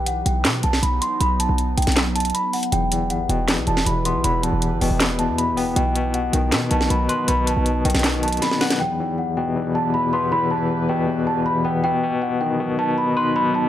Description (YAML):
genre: hip hop, trap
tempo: 158 BPM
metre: 4/4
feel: half-time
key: E harmonic minor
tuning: A4 = 440 Hz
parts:
  - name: celesta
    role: melody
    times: 0.0-13.7 s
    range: F#5 to C6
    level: -23 LUFS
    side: right 1 dB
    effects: low-pass filter
  - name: warbly tape-like pad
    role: sustained chords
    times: 0.0-13.7 s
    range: E3 to B4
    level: -28 LUFS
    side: right 2 dB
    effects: chorus, built-in reverb
  - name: short 808-style bass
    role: bass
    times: 0.0-8.4 s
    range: E1 to B2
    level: -23 LUFS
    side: equal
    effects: none
  - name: trap drum kit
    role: drums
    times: 0.1-8.8 s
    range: handclaps, hi-hat, snare drum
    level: -22 LUFS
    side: equal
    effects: none
  - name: barky tine electric piano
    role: accompaniment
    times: 2.7-13.7 s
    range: E2 to B4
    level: -23 LUFS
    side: left 4 dB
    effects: overdrive, fast tremolo, low-pass filter
room: light reverb, digital ambience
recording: none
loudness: -18 LUFS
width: side -12 dB against mid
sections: 0.0-8.8 A section; 8.8-13.7 B section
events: drum fill 8.4-8.8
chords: 0.0 B; 2.7 Em; 5.8 B; 8.8 Em; 11.8 B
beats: 0.07 0.45 0.83 | 1.21 1.58 1.97 2.35 | 2.72 3.10 3.48 3.86 | 4.24 4.62 5.00 5.38 | 5.76 6.14 6.52 6.90 | 7.28 7.66 8.04 8.42 | 8.80 9.18 9.56 9.94 | 10.32 10.70 11.08 11.46 | 11.84 12.22 12.60 12.98 | 13.36